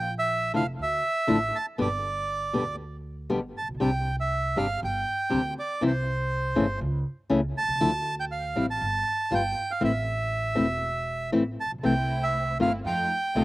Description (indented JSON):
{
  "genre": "tango",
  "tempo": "119 BPM",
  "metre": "4/4",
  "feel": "rubato",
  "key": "unclear",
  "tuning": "A4 = 439 Hz",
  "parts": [
    { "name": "bandoneon", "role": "melody", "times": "0.0-13.4 s", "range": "C5 to A5", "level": "-27 LUFS", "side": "right 2 dB", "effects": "slapback echo" },
    { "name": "upright bass", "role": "bass", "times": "0.0-13.4 s", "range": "E1 to F2", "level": "-32 LUFS", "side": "right 1 dB", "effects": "none" },
    { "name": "nylon-string guitar", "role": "accompaniment", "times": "0.5-13.4 s", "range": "B2 to G4", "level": "-26 LUFS", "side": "left 2 dB", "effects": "slapback echo" },
    { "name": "warm studio string section", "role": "stabs", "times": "11.8-13.4 s", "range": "A3 to F4", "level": "-35 LUFS", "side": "right 2 dB", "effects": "slapback echo" }
  ],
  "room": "little or no reverb",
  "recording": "recorded outdoors, with no room sound",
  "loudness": "-24 LUFS",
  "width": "side -18 dB against mid",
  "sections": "0.0-13.4 A section",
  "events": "none",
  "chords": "0.0 Bb; 0.8 Dsus2; 1.8 G; 3.8 Gsus4; 5.8 C; 6.8 A/C#; 7.8 Dmadd9; 8.8 Gsus2; 9.3 G7; 9.8 Am; 11.8 C6; 12.9 F7"
}